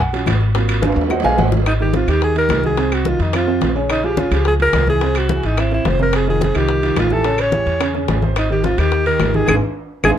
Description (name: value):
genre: Afro-Cuban jazz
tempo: 215 BPM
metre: 4/4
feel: straight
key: Ab major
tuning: A4 = 445 Hz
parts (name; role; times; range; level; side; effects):
- warm upright piano; accompaniment; 0.0-10.1 s; C3 to Ab5; -21 LUFS; right 4 dB; none
- upright bass; bass; 0.0-10.1 s; F1 to F2; -19 LUFS; equal; none
- bongos; percussion; 0.0-10.1 s; none; -26 LUFS; left 8 dB; none
- congas; percussion; 0.1-10.1 s; none; -24 LUFS; left 3 dB; none
- timbales; percussion; 0.1-10.1 s; none; -25 LUFS; right 4 dB; none
- claves; percussion; 0.3-10.1 s; none; -27 LUFS; left 4 dB; none
- breathy alto saxophone; melody; 1.7-10.1 s; Eb4 to C#5; -19 LUFS; left 1 dB; none
room: light reverb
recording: dark, warm production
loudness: -14 LUFS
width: side -10 dB against mid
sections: 0.0-1.7 A section; 1.7-10.2 B section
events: upright piano solo 0.0-1.7; drum fill 0.8-1.7, 9.8-10.2; band accent 9.5-10.2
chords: 0.0 Ebm9 (rootless); 0.6 Ab13; 1.7 Abmaj9; 2.8 Cdim; 3.3 F5; 3.9 Bbm9; 5.0 Caug; 6.1 Fsus2; 7.2 A7; 8.4 Abmaj7